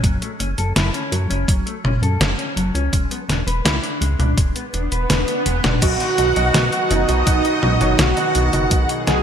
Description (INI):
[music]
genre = synthwave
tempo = 83 BPM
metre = 4/4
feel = straight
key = B major from 5.8 s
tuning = A4 = 442 Hz
[part]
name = mellow electric guitar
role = arpeggios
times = 0.0-9.2 s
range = F#3 to F#5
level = -26 LUFS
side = left 3 dB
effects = vintage 12-bit sampler grit, digital delay
[part]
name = chorused synth bass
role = bass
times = 0.0-9.2 s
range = E1 to F#2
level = -21 LUFS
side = equal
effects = sidechain pumping
[part]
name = detuned 8-bit digital drum machine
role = drums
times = 0.0-9.2 s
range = crash cymbal, hi-hat, snare drum, toms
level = -21 LUFS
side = equal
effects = overdrive
[part]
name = electronic kick drum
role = drums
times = 0.0-8.9 s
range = none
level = -19 LUFS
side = equal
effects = overdrive
[part]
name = swell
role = sound effects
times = 4.6-5.8 s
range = none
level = -26 LUFS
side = equal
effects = none
[part]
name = wide unison lead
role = melody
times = 5.8-9.2 s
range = D#4 to G#4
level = -20 LUFS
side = right 3 dB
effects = wide subtle chorus, ping-pong delay
[part]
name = string machine, violins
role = second line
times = 5.8-9.2 s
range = D#5 to G#5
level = -24 LUFS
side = equal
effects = ensemble chorus, digital delay
[part]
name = warm analog pad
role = sustained chords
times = 5.8-9.2 s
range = B2 to G#4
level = -25 LUFS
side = right 1 dB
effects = chorus, sidechain pumping
[part]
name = warm baby grand piano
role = stabs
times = 5.8-9.2 s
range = B2 to F#5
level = -25 LUFS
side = right 2 dB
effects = digital delay
[sound]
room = moderate lush hall reverb, RT60 1.8 s, digital ambience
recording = bright 1980s-style digital production, lossy compression artefacts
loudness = -16 LUFS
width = side -8 dB against mid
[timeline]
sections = 0.0-5.8 A section; 5.8-9.2 B section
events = swell 4.6-5.8; drum fill 5.1-5.8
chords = 0.0 F#m; 2.9 E7; 5.8 B